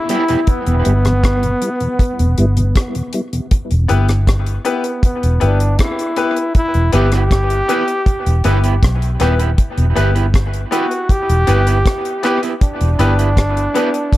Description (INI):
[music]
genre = dub reggae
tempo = 79 BPM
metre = 4/4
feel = straight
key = E minor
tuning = A4 = 440 Hz
[part]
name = brilliant trombone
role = melody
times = 0.0-14.2 s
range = B3 to G4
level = -19 LUFS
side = equal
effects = tape echo
[part]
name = electric guitar at the edge of break-up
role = accompaniment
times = 0.1-0.4, 6.9-13.9 s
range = B3 to B4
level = -23 LUFS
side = right 6 dB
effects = tape echo
[part]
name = mellow tonewheel organ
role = accompaniment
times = 0.1-3.4, 9.8 s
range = E2 to E4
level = -22 LUFS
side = equal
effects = chorus vibrato, slow rotary speaker, tape echo
[part]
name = deep reggae drum kit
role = drums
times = 0.1-14.2 s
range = hi-hat, kick drum, rim click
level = -17 LUFS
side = equal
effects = none
[part]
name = vintage muted fingered electric bass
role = bass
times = 0.7-13.7 s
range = D#1 to B1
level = -14 LUFS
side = equal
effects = none
[part]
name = bright upright piano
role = stabs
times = 3.9-14.0 s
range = B3 to B4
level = -21 LUFS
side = left 4 dB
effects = tape echo
[sound]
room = light reverb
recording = echo-heavy mix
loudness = -13 LUFS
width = side -16 dB against mid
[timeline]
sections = 0.0-14.2 A section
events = break 0.0-3.5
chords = 0.0 Em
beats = | 0.48 1.24 2.00 2.75 | 3.51 4.27 5.03 5.79 | 6.55 7.30 8.06 8.82 | 9.58 10.34 11.10 11.85 | 12.61 13.37 14.12